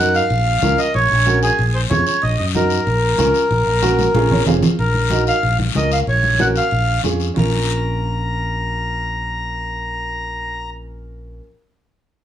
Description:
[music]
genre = latin, cumbia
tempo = 187 BPM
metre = 4/4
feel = straight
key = Bb minor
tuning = A4 = 440 Hz
[part]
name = accordion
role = melody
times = 0.0-10.7 s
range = Ab4 to Bb5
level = -19 LUFS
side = equal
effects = plate reverb
[part]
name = clear upright piano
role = accompaniment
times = 0.0-11.4 s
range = C4 to F5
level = -22 LUFS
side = right 3 dB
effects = none
[part]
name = fingered electric bass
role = bass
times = 0.0-11.4 s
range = F1 to Gb2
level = -20 LUFS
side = equal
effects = none
[part]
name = guiro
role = percussion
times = 0.1-7.4 s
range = none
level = -28 LUFS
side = left 8 dB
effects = none
[part]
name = congas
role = percussion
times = 0.3-7.4 s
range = none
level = -22 LUFS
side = left 1 dB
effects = none
[sound]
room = moderate studio reverb, RT60 0.5 s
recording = small room ambience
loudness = -15 LUFS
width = side -10 dB against mid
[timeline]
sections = 0.0-4.8 A section; 4.8-7.4 B section; 7.4-9.9 C section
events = drum fill 4.0-4.8; upright piano fill 4.1-4.8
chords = 0.3 Bbm; 0.9 Gb/Bb; 1.6 Db/Bb; 2.2 Ebm/Bb; 2.9 Bbm; 3.5 Gb/Bb; 4.1 Db/Bb; 4.5 Fm; 4.8 Ebm/Bb; 5.4 Bbm; 6.1 Gb/Bb; 6.7 Db/Bb; 7.4 Bbm

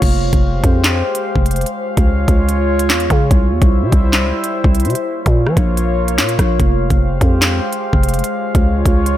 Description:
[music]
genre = hip hop, drill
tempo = 146 BPM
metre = 4/4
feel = half-time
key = F harmonic minor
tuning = A4 = 440 Hz
[part]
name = warbly tape-like pad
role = sustained chords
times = 0.0-9.2 s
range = G3 to F5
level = -19 LUFS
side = equal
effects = chorus, built-in reverb
[part]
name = growling 808-style bass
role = bass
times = 0.0-9.2 s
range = F1 to F3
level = -16 LUFS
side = equal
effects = none
[part]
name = drill drum kit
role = drums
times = 0.0-9.2 s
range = crash cymbal, handclaps, hi-hat, kick drum, rim click, snare drum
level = -15 LUFS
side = equal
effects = none
[sound]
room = digital ambience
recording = none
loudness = -12 LUFS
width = side -13 dB against mid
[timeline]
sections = 0.0-9.2 A section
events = none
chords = 0.0 Fmadd9; 1.7 Db; 3.3 C; 5.0 Bbm; 6.6 Fmadd9; 8.2 Db

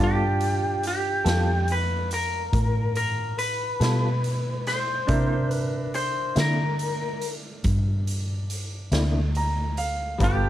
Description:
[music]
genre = slow blues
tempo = 47 BPM (dotted quarters)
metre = 12/8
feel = straight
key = unclear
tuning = A4 = 440 Hz
[part]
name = lightly driven lead guitar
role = melody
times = 0.0-10.5 s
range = G4 to C5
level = -27 LUFS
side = left 1 dB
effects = none
[part]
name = bright grand piano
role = accompaniment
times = 0.0-10.5 s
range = B3 to Bb5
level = -32 LUFS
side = right 4 dB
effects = none
[part]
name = electric guitar through a small old amp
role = accompaniment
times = 0.0-10.5 s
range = C3 to A4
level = -29 LUFS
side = left 3 dB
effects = tremolo
[part]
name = vintage muted fingered electric bass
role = bass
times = 0.0-10.5 s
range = G1 to D3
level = -25 LUFS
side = equal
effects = none
[part]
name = raw garage drum kit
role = drums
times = 0.4-10.4 s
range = hi-hat, kick drum, snare drum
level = -30 LUFS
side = equal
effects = none
[sound]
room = little or no reverb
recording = dark, warm production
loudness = -22 LUFS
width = side -13 dB against mid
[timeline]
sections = 0.0-10.5 A section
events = grand piano fill 8.9-10.2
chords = 0.0 G9; 5.1 C9

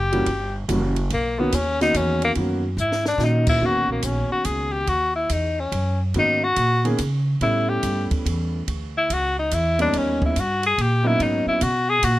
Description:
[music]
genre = jazz, small-group swing and bop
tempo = 143 BPM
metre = 3/4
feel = swing 66% on 8ths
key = B major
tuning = A4 = 441 Hz
[part]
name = breathy tenor saxophone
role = melody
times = 0.0-12.2 s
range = A#3 to G#4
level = -22 LUFS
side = left 2 dB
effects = none
[part]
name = upright bass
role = bass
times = 0.0-12.2 s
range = F#1 to C#3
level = -24 LUFS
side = equal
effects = none
[part]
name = warm concert grand piano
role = accompaniment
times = 0.1-11.6 s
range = D#3 to G#4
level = -25 LUFS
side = right 1 dB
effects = none
[part]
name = compact cocktail drum kit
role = drums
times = 0.1-12.2 s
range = crash cymbal, hi-hat, kick drum, ride cymbal, snare drum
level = -30 LUFS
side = right 1 dB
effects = none
[sound]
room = little or no reverb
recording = close, detailed microphones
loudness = -19 LUFS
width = side -16 dB against mid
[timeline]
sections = 0.0-3.6 A section; 3.6-12.2 A section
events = tenor saxophone solo 0.0-12.2; drum fill 2.8-3.2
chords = 0.0 F#7b9; 1.1 Bmaj9; 4.9 D#m7; 6.1 G#m11; 7.4 A7; 8.7 C#m; 9.9 D#7b13; 11.2 G#m11

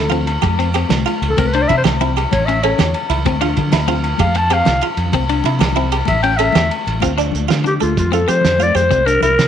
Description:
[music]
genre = highlife guitar band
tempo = 127 BPM (dotted quarters)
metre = 12/8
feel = straight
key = D minor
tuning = A4 = 439 Hz
[part]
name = growling clarinet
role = melody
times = 0.0-9.5 s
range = F4 to A5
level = -17 LUFS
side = left 2 dB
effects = none
[part]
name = buff-stop harpsichord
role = arpeggios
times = 0.0-9.5 s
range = D4 to A4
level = -23 LUFS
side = right 11 dB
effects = none
[part]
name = fingered electric bass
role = bass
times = 0.0-9.5 s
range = A1 to F3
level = -19 LUFS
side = right 1 dB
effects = none
[part]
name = congas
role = percussion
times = 0.0-9.4 s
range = none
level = -26 LUFS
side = left 12 dB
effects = none
[part]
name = clean electric guitar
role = accompaniment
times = 0.1-9.3 s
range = C4 to D4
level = -24 LUFS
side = left 9 dB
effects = none
[part]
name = cloth-damped thuddy drum kit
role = drums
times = 0.1-9.5 s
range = hi-hat, kick drum, ride cymbal, snare drum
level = -20 LUFS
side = right 4 dB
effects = none
[part]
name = agogo bells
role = percussion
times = 0.3-6.9 s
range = none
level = -24 LUFS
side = left 11 dB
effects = none
[sound]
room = moderate plate reverb, RT60 1.5 s, studio ambience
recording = 1960s-style stereo with parts hard left and right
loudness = -13 LUFS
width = side -9 dB against mid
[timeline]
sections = 0.0-7.0 A section; 7.0-9.5 B section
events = clarinet solo 0.0-7.0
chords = 0.4 Fsus2; 1.4 C; 2.3 A7; 3.3 Dm7; 4.2 Fsus2; 5.1 C; 6.1 A7; 7.0 Dm; 8.0 Fadd9; 8.9 C7

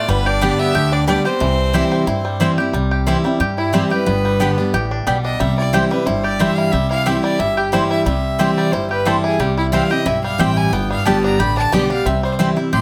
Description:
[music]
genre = bluegrass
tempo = 180 BPM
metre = 4/4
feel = swing 53% on 8ths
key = C major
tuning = A4 = 440 Hz
[part]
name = clear fiddle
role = melody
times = 0.0-2.4 s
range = B4 to E5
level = -24 LUFS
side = equal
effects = plate reverb
[part]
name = clear fiddle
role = second line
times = 0.0-12.8 s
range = B3 to C6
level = -25 LUFS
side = equal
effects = none
[part]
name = picked steel-string acoustic guitar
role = accompaniment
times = 0.0-12.8 s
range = G2 to G4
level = -21 LUFS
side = equal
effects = none
[part]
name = bluegrass banjo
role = arpeggios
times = 0.0-12.8 s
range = E3 to G4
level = -25 LUFS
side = equal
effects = none
[part]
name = upright bass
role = bass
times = 0.1-12.8 s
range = G1 to G2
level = -25 LUFS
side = equal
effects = none
[part]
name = mandolin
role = stabs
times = 0.4-12.5 s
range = B3 to G5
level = -25 LUFS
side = equal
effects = none
[sound]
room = moderate studio reverb, RT60 0.7 s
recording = none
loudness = -17 LUFS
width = mono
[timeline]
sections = 0.0-2.7 A section; 2.7-12.8 B section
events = fiddle solo 2.7-12.8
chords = 0.1 G; 1.4 C; 4.1 G; 5.4 C; 10.7 G; 12.1 C

